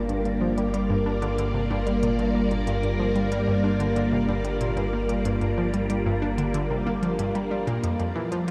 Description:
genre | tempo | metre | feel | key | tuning
ambient, sequencer-driven space music | 93 BPM | 4/4 | straight | G minor | A4 = 440 Hz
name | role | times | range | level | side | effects
phased string machine | sustained chords | 0.0-8.5 s | C3 to D5 | -28 LUFS | equal | ensemble chorus, phaser, shimmer reverb
fat analog bass | bass | 0.0-8.5 s | F1 to G1 | -32 LUFS | equal | none
pulsing gated texture | texture | 0.0-8.5 s | F4 to F5 | -39 LUFS | equal | chorus, built-in reverb, shimmer reverb
analog pluck | riff | 0.1-8.5 s | F2 to D4 | -30 LUFS | equal | chorus, analog delay, shimmer reverb
electronic hi-hat and percussion blips | percussion | 0.1-8.5 s | none | -44 LUFS | equal | analog delay
room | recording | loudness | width
wet huge ambient reverb, RT60 7.5 s | dark, warm production | -25 LUFS | mono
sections
0.0-8.5 A section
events
none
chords
0.0 Gm; 7.8 F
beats
| 0.09 0.74 1.38 2.03 | 2.67 3.32 3.96 4.61 | 5.25 5.90 6.54 7.19 | 7.83 8.48

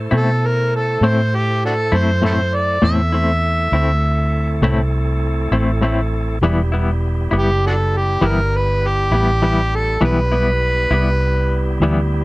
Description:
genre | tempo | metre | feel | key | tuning
blues | 67 BPM (dotted quarters) | 12/8 | straight | E minor | A4 = 439 Hz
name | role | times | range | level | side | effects
bright tonewheel organ | sustained chords | 0.0-12.2 s | G3 to C5 | -27 LUFS | right 1 dB | slow rotary speaker
vintage muted fingered electric bass | bass | 0.0-12.2 s | E1 to B2 | -18 LUFS | equal | none
semi-hollow electric guitar | accompaniment | 0.1-12.0 s | A2 to E4 | -18 LUFS | left 2 dB | tremolo
overdriven harmonica | melody | 0.2-11.8 s | D4 to E5 | -19 LUFS | equal | none
room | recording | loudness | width
little or no reverb | dry, close 1970s-style studio recording | -15 LUFS | side -21 dB against mid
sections
0.0-12.2 A section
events
none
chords
0.0 Am; 6.4 Em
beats
0.13 1.03 1.93 | 2.83 3.73 4.62 5.53 | 6.42 7.32 8.22 9.12 | 10.02 10.92 11.81

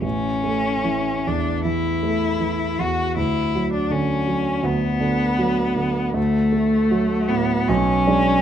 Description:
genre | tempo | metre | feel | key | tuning
classical, romantic duo for cello and grand piano | 79 BPM | 4/4 | rubato | unclear | A4 = 440 Hz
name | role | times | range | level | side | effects
rich cello | melody | 0.0-8.4 s | A3 to F#4 | -21 LUFS | left 2 dB | none
warm grand piano | accompaniment | 0.0-8.4 s | A1 to D4 | -21 LUFS | right 2 dB | none
room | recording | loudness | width
light reverb | none | -18 LUFS | side -9 dB against mid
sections
0.0-8.4 A section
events
none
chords
0.0 A; 3.2 Bm/D; 6.2 D; 7.7 G#dim/B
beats
| 0.04 0.88 1.67 2.42 | 3.17 3.91 4.65 5.40 | 6.17 6.92 7.69

